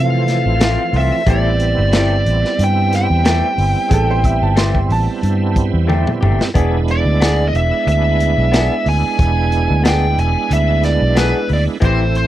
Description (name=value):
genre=straight-eighth soul blues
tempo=91 BPM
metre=4/4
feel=swing 54% on 16ths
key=unclear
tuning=A4 = 441 Hz
part: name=dark smooth lead guitar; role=melody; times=0.0-12.3 s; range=B4 to G#5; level=-19 LUFS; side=equal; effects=overdrive
part: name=bright tonewheel organ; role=accompaniment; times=0.0-12.3 s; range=E3 to E4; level=-21 LUFS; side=right 6 dB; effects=slow rotary speaker, overdrive, chorus vibrato
part: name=vintage muted fingered electric bass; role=bass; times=0.0-12.3 s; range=E1 to C3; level=-16 LUFS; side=equal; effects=none
part: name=crunchy breakbeat drum kit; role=drums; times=0.3-12.3 s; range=hi-hat, kick drum, snare drum, toms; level=-18 LUFS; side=equal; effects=none
part: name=electric guitar through a small old amp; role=stabs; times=0.6-12.0 s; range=E3 to G#4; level=-21 LUFS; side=left 4 dB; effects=none
part: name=bright upright piano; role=second line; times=3.9-5.6 s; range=G#4 to C6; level=-23 LUFS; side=right 3 dB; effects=none
room=little or no reverb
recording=dry, close 1970s-style studio recording, faint mains hum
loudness=-13 LUFS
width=side -13 dB against mid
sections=0.0-12.3 A section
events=drum fill 5.9-6.6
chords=0.0 Dm7 (rootless); 1.3 Am7; 6.6 E7